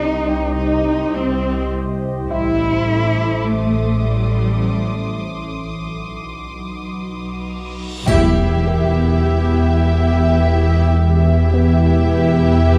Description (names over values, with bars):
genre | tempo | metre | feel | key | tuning
cinematic, suspense film score | 104 BPM | 5/4 | straight | E minor from 8.1 s | A4 = 440 Hz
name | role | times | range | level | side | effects
warbly tape-like pad | sustained chords | 0.0-12.8 s | B3 to E5 | -27 LUFS | equal | chorus, built-in reverb, phaser
rich studio cello section | bass | 0.0-12.8 s | E2 to E4 | -23 LUFS | equal | none
rich studio double bass section | bass | 0.0-12.8 s | E1 to C2 | -24 LUFS | equal | none
organ-like drone | drone | 0.0-12.8 s | A1 to E2 | -26 LUFS | equal | ensemble chorus, built-in reverb
warm grand piano | texture | 0.0-12.8 s | B3 to G5 | -28 LUFS | equal | none
warm studio violin section | texture | 2.3-7.8 s | C6 to D#6 | -35 LUFS | equal | none
reverse cymbal and impact | sound effects | 7.8-11.0 s | none | -28 LUFS | equal | none
warm studio violin section | melody | 8.1-12.8 s | E5 | -27 LUFS | equal | none
warm studio violin section | second line | 8.1-12.8 s | G4 | -27 LUFS | equal | none
warm studio viola section | accompaniment | 8.1-12.8 s | E4 | -28 LUFS | equal | none
marimba with soft mallets | riff | 8.1-12.8 s | E2 to E3 | -19 LUFS | equal | none
triangle | percussion | 8.1-9.2 s | none | -41 LUFS | equal | none
room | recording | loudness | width
wet recital hall reverb, RT60 1.5 s | dark, warm production | -17 LUFS | mono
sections
0.0-8.1 A section; 8.1-12.8 B section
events
break 5.2-8.1; reverse cymbal 7.8; band accent 8.1-8.7; impact 8.1-11.0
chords
0.0 Cm; 2.3 Am; 5.2 B; 8.1 Em